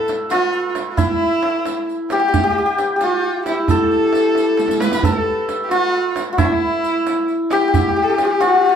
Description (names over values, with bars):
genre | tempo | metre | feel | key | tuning
Persian modal ensemble | 89 BPM (dotted quarters) | 6/8 | straight | E dastgah shur | A4 = 441 Hz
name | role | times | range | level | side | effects
santur | melody | 0.0-8.8 s | E4 to B4 | -17 LUFS | left 1 dB | none
clear kamancheh | second line | 0.0-8.8 s | D4 to B4 | -21 LUFS | equal | none
riq | percussion | 0.1-8.7 s | none | -29 LUFS | right 5 dB | none
tombak | percussion | 0.1-8.5 s | none | -23 LUFS | right 4 dB | none
room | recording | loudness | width
moderate small room reverb, RT60 0.5 s | band playing live in one room | -15 LUFS | side -8 dB against mid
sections
0.0-8.8 A section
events
drum fill 4.6-5.0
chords
none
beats
0.31 | 0.98 1.66 | 2.33 3.01 | 3.68 4.36 | 5.03 5.71 | 6.38 7.06 | 7.73 8.41